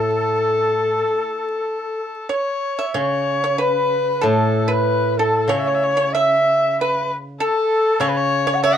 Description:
chinese traditional, Chinese chamber ensemble; 95 BPM; 4/4; rubato; A gong mode; A4 = 441 Hz
xiao; melody; 0.0-8.8 s; A4 to F#5; -20 LUFS; left 1 dB
pipa; second line; 0.0-8.8 s; A4 to E5; -23 LUFS; right 4 dB
rich erhu; second line; 0.0-8.8 s; A4 to F#5; -22 LUFS; left 2 dB
steel-string zither; accompaniment; 0.0-8.8 s; A2 to C#3; -23 LUFS; equal
wet small room ambience, RT60 0.5 s; dark, warm production, vinyl crackle; -17 LUFS; side -9 dB against mid
0.0-3.0 A section; 3.0-8.8 B section
| 0.37 1.00 1.65 2.31 | 2.96 3.60 4.24 4.87 | 5.50 6.13 6.76 7.39 | 8.01 8.64

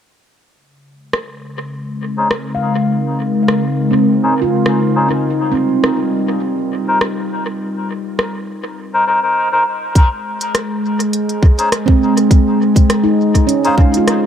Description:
ambient dub; 102 BPM; 4/4; swing 54% on 16ths; Bb dorian; A4 = 443 Hz
warbly tape-like pad; sustained chords; 1.6-14.3 s; Db3 to C5; -17 LUFS; left 1 dB; chorus, built-in reverb
organic electronic drum kit; drums; 1.1-14.2 s; hi-hat, rim click; -21 LUFS; equal; dub echo
melodica; stabs; 2.2-13.8 s; Db4 to C5; -19 LUFS; left 2 dB; low-pass filter, dub echo
handpan; arpeggios; 2.5-7.6, 11.9-14.3 s; C4 to F5; -18 LUFS; right 4 dB; vintage 12-bit sampler grit, low-pass filter, tape echo
electronic kick drum; drums; 10.0-13.9 s; -10 LUFS; equal
moderate spring reverb, RT60 2.8 s; echo-heavy mix; -13 LUFS; side -9 dB against mid
0.5-10.0 A section; 10.0-14.3 B section
filter sweep on ambient pad 0.5-10.0; filter sweep on handpan 0.5-10.0
0.5 Bbm11; 5.3 Cm7; 10.0 Ab6
| 0.55 1.13 1.72 2.31 | 2.90 3.49 4.08 4.66 | 5.25 5.84 6.43 7.02 | 7.61 8.19 8.78 9.37 | 9.96 10.55 11.13 11.72 | 12.31 12.90 13.49 14.07

